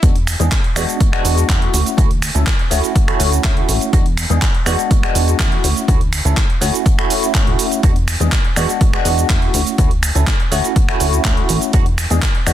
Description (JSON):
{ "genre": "filtered disco house", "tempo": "123 BPM", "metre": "4/4", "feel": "straight", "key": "E mixolydian", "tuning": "A4 = 440 Hz", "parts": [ { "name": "barky tine electric piano", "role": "accompaniment", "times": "0.0-12.5 s", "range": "G#3 to A4", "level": "-20 LUFS", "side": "equal", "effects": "medium stereo tremolo, phaser, sidechain pumping, low-pass filter" }, { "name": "plucky analog bass", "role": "bass", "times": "0.0-12.5 s", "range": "D1 to E2", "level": "-18 LUFS", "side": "equal", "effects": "sidechain pumping, low-pass filter" }, { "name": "electronic kick drum", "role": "drums", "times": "0.0-12.3 s", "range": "none", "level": "-15 LUFS", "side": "equal", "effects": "none" }, { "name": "house drum kit", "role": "drums", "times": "0.0-12.5 s", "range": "finger snaps, handclaps, hi-hat, shaker", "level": "-21 LUFS", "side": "right 2 dB", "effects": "sidechain pumping on perc, sidechain pumping on hats, soft clipping on snare" } ], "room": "little or no reverb", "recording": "dense, heavily limited modern master", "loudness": "-13 LUFS", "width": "side -12 dB against mid", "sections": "0.0-12.5 A section", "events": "drop 0.0-12.5", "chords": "0.0 E9; 1.7 Dmaj9; 3.9 E9; 5.6 Dmaj9; 7.8 E9; 9.5 Dmaj9; 11.7 E9", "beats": "| 0.03 0.52 1.01 1.49 | 1.98 2.47 2.96 3.44 | 3.93 4.42 4.91 5.40 | 5.88 6.37 6.86 7.35 | 7.83 8.32 8.81 9.30 | 9.79 10.27 10.76 11.25 | 11.74 12.22" }